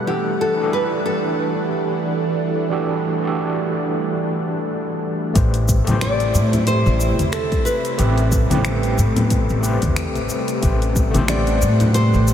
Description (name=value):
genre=sunset chillout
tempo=91 BPM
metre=4/4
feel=swing 57% on 16ths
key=A dorian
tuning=A4 = 440 Hz
part: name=overdriven tine electric piano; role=accompaniment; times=0.0-12.3 s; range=E3 to F#5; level=-24 LUFS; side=moving between left 5 dB and right 5 dB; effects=medium tremolo, auto-pan, diffuse ambient delay
part: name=lush unison pad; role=sustained chords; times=0.0-12.3 s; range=C3 to F#5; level=-25 LUFS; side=right 1 dB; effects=chorus, phaser
part: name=nylon-string guitar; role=melody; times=0.1-12.3 s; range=G4 to D5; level=-25 LUFS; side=equal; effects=wide subtle chorus, diffuse ambient delay
part: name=upright bass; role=bass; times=5.4-12.3 s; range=A1 to A2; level=-18 LUFS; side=equal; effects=none
part: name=deep house drum kit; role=drums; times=5.4-12.3 s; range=finger snaps, hi-hat, shaker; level=-29 LUFS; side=left 1 dB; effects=low-pass filter on hats, studio reverb, low-pass filter on perc, low-pass filter on snare
part: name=electronic kick drum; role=drums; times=5.4-11.1 s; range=none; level=-20 LUFS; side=equal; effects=studio reverb
part: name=congas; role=percussion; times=5.9-11.9 s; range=none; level=-25 LUFS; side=left 2 dB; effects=none
room=moderate huge ambient reverb, RT60 7.7 s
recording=dreamy mix soaked in reverb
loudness=-17 LUFS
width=side -9 dB against mid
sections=0.0-5.4 A section; 5.4-12.3 B section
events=none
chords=0.1 Em11; 5.4 Am9